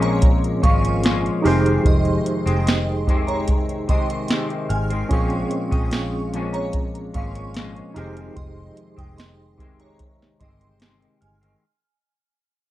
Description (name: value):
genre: indie pop, bedroom pop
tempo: 74 BPM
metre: 4/4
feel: straight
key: unclear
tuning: A4 = 441 Hz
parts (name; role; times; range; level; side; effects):
- shimmering bell with halo; second line; 0.0-11.4 s; Db5 to F6; -30 LUFS; right 3 dB; ensemble chorus, analog chorus, analog delay
- barky tine electric piano; accompaniment; 0.0-11.6 s; C4 to C5; -27 LUFS; right 3 dB; medium tremolo, cassette tape
- semi-hollow electric guitar; accompaniment; 0.0-11.6 s; F2 to Db4; -25 LUFS; left 3 dB; ensemble chorus, warbly pitch drift
- vintage muted fingered electric bass; bass; 0.0-11.5 s; F1 to Bb1; -25 LUFS; equal; none
- soft vintage rhythm box; drums; 0.0-11.6 s; hi-hat, kick drum, snare drum; -20 LUFS; equal; vintage 12-bit sampler grit
room: light reverb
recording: dark, warm production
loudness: -18 LUFS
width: side -15 dB against mid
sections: 0.0-11.6 A section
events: fade-out 0.0-11.6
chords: 0.0 Bbm7; 1.4 Fm7; 5.1 Bbm7; 8.0 Fm7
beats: 0.22 1.03 | 1.85 2.66 3.48 4.29 | 5.11 5.92 6.74 7.55 | 8.37 9.18 9.99 10.81